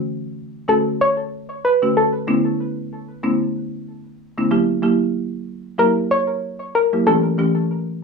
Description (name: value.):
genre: afrobeats.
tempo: 94 BPM.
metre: 4/4.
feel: swing 58% on 16ths.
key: D major.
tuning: A4 = 441 Hz.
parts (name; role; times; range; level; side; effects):
folk marimba with medium mallets; accompaniment; 0.0-8.0 s; D3 to G4; -20 LUFS; equal; none.
soft round pluck; melody; 0.7-8.0 s; A4 to C#5; -19 LUFS; left 1 dB; chorus, digital delay.
room: wet studio reverb, RT60 0.6 s.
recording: worn, warbling old tape, cassette tape, warbly pitch drift, small room ambience.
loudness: -17 LUFS.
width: side -4 dB against mid.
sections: 0.0-8.0 A section.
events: none.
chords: 0.0 Dmaj7; 2.3 Bm11; 4.5 F#7b9; 7.1 A7/E.